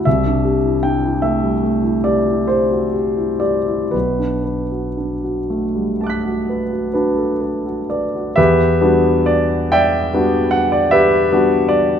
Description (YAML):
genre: classical, impressionist solo piano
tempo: 38-53 BPM (dotted quarters)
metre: 9/8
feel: rubato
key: E minor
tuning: A4 = 440 Hz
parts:
  - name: clear concert grand piano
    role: solo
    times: 0.0-12.0 s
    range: B1 to B6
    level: -14 LUFS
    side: equal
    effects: none
room: moderate recital hall reverb, RT60 1.3 s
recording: minimal, uncompressed stereo recording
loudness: -15 LUFS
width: side -8 dB against mid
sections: 0.0-8.4 A section; 8.4-12.0 A section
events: none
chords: 0.1 C69; 3.9 Bm7; 8.4 Em9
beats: | 0.06 1.21 2.49 | 3.93 5.50 6.95 | 8.37 9.72 10.92